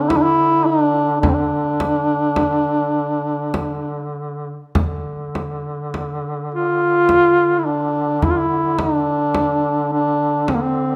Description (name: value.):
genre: caucasian folk, Caucasian lament.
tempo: 49-54 BPM.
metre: 3/4.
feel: rubato.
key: D minor.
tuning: A4 = 439 Hz.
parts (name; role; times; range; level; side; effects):
mellow duduk; melody; 0.0-11.0 s; Bb3 to F4; -19 LUFS; equal; none.
mellow duduk; drone; 0.0-11.0 s; D3; -28 LUFS; equal; none.
frame drum; percussion; 0.1-10.7 s; none; -24 LUFS; equal; none.
room: moderate recital hall reverb, RT60 1.5 s.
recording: none.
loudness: -19 LUFS.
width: mono.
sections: 0.0-4.8 A section; 4.8-11.0 B section.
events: none.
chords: none.